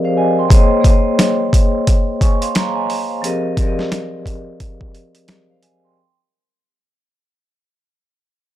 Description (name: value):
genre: hip hop, boom-bap hip-hop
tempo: 88 BPM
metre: 4/4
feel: swing 61% on 16ths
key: Bb minor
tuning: A4 = 441 Hz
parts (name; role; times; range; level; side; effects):
- vibraphone with medium hard mallets; accompaniment; 0.0-6.2 s; F3 to Db6; -17 LUFS; equal; high-pass filter, low-pass filter
- boom bap sampler-style drum kit; drums; 0.5-5.8 s; hi-hat, kick drum, snare drum; -14 LUFS; equal; overdrive
room: little or no reverb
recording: dry, gritty hardware recording, transformer saturation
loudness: -13 LUFS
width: side -13 dB against mid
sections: 0.5-6.0 A section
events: break 0.0-0.5; fade-out 0.5-6.0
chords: 0.0 Fm11; 0.5 Bbm11; 3.2 Fm11